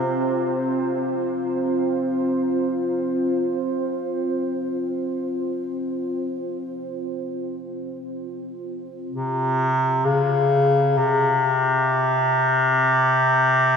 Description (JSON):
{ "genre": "ambient", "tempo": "free time", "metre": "none", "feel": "none", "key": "unclear", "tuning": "A4 = 441 Hz", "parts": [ { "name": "clear bass clarinet", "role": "melody", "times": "0.0-1.2, 9.1-13.8 s", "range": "C3 to Db3", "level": "-18 LUFS", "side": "left 1 dB", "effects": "dub echo" }, { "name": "deep dark ambient pad", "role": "sustained chords", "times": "0.0-13.8 s", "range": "C4 to C5", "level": "-25 LUFS", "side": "equal", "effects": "chorus, built-in reverb" } ], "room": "wet plate reverb, RT60 2.5 s", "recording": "echo-heavy mix, small room ambience", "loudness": "-20 LUFS", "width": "side -6 dB against mid", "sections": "0.0-13.8 A section", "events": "fade-out on ambient pad 0.0-13.8", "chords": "0.0 F5" }